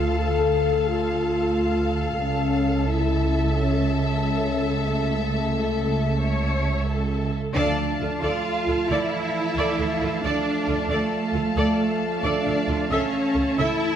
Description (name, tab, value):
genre	cinematic, epic orchestral film score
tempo	90 BPM (dotted quarters)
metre	12/8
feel	straight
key	D harmonic minor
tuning	A4 = 439 Hz
part	warm symphonic violin section	melody	0.0-14.0 s	A4 to A5	-34 LUFS	left 5 dB	none
part	rich symphonic violin section	second line	0.0-14.0 s	E5 to A5	-31 LUFS	left 3 dB	none
part	warm symphonic viola section	accompaniment	0.0-13.8 s	F4 to E5	-29 LUFS	right 1 dB	none
part	mellow French horn section	sustained chords	0.0-14.0 s	E3 to A4	-27 LUFS	left 4 dB	none
part	dark symphonic cello section	bass	0.0-14.0 s	C#2 to F4	-27 LUFS	right 3 dB	none
part	warm symphonic double bass section	bass	0.0-13.7 s	C#2 to D2	-27 LUFS	right 2 dB	none
part	warm trombone section	sustained chords	7.6-14.0 s	E3 to A3	-30 LUFS	right 5 dB	none
part	timpani	percussion	7.6-8.2 s	D3	-34 LUFS	left 1 dB	none
room	moderate scoring stage reverb, RT60 1.7 s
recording	none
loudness	-21 LUFS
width	side -9 dB against mid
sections	0.0-7.6 A section; 7.6-14.0 A section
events	band accent 7.6-8.0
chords	0.0 Dm; 2.2 A/C#; 7.6 Dm; 12.9 A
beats	0.20 0.87 1.54 | 2.21 2.88 3.55 4.22 | 4.88 5.55 6.22 6.89 | 7.56 8.23 8.90 9.57 | 10.23 10.90 11.57 12.24 | 12.91 13.58